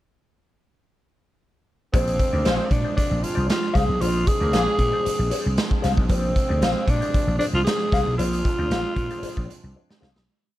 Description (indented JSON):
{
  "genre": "funk",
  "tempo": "115 BPM",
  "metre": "4/4",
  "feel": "straight",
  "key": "unclear",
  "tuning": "A4 = 440 Hz",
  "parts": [
    { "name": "growling tenor saxophone", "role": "melody", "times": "1.9-10.0 s", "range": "C4 to Ab4", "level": "-25 LUFS", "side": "equal", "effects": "none" },
    { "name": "mellow electric guitar", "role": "accompaniment", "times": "1.9-10.2 s", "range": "Ab4 to F5", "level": "-30 LUFS", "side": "left 6 dB", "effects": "wah, plate reverb" },
    { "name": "bright tonewheel organ", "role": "sustained chords", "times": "1.9-10.2 s", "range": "F3 to D4", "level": "-35 LUFS", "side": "right 1 dB", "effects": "slow rotary speaker, plate reverb" },
    { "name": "vintage slap bass", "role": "bass", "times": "1.9-10.3 s", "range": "Bb1 to Bb2", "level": "-24 LUFS", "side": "equal", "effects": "none" },
    { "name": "raw garage drum kit", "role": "drums", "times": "1.9-10.3 s", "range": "hi-hat, kick drum, snare drum", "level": "-24 LUFS", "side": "equal", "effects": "none" },
    { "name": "clear horn section", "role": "second line", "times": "2.3-4.8 s", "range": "F3 to C5", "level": "-32 LUFS", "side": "right 2 dB", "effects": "plate reverb" }
  ],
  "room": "light reverb",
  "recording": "dark, warm production",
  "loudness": "-20 LUFS",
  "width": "side -15 dB against mid",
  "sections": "1.9-10.3 bridge",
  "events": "fade-out 8.2-10.3; drum fill 9.8-10.3",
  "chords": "1.9 Bb9",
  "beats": "| 1.94 2.46 2.98 3.50 | 4.02 4.54 5.06 5.58 | 6.10 6.62 7.14 7.66 | 8.19 8.71 9.23 9.75"
}